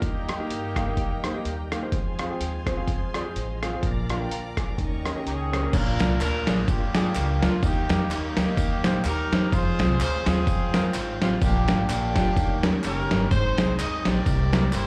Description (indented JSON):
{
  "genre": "uptempo gospel",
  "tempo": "126 BPM",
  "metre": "4/4",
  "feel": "swing 57% on 8ths",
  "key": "Eb major",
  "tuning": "A4 = 439 Hz",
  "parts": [
    { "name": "clear horn section", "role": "melody", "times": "0.0-1.7, 5.3-14.9 s", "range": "Bb3 to Eb5", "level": "-32 LUFS", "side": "equal", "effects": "slapback echo" },
    { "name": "warm grand piano", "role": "accompaniment", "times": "0.0-14.9 s", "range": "Ab2 to D6", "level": "-34 LUFS", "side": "equal", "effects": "slapback echo" },
    { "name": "bright tonewheel organ", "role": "sustained chords", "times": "0.0-14.9 s", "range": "Eb3 to G5", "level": "-40 LUFS", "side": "equal", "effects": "none" },
    { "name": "warm studio string section", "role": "sustained chords", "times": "0.0-5.7 s", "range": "Bb4 to D6", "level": "-43 LUFS", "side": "equal", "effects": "none" },
    { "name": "upright bass", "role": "bass", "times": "0.0-14.9 s", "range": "Gb1 to G2", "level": "-31 LUFS", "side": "equal", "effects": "none" },
    { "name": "lo-fi sampler-style drum kit", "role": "drums", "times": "0.0-14.9 s", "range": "crash cymbal, hi-hat, kick drum, ride cymbal, rim click, snare drum", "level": "-28 LUFS", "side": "equal", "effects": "overdrive" },
    { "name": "tambourine and handclaps", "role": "percussion", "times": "5.7-14.9 s", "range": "none", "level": "-41 LUFS", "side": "equal", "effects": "slapback echo" }
  ],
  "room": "studio reverb",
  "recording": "live gig heard through the venue's PA, club reverb",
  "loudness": "-25 LUFS",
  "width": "mono",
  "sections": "0.0-5.7 A section; 5.7-14.9 B section",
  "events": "grand piano fill 5.0-5.7",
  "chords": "0.0 Eb; 1.9 Fm; 3.8 Bb; 4.8 Eb7; 5.7 Bb; 7.6 Eb; 9.5 Fm; 11.4 Bb; 12.4 Eb7; 13.3 Ab; 14.3 C7",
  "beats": "| 0.02 0.50 0.97 1.45 | 1.93 2.40 2.88 3.35 | 3.83 4.31 4.78 5.26 | 5.73 6.21 6.68 7.16 | 7.63 8.10 8.58 9.05 | 9.52 10.00 10.47 10.95 | 11.42 11.89 12.37 12.84 | 13.31 13.79 14.26 14.74"
}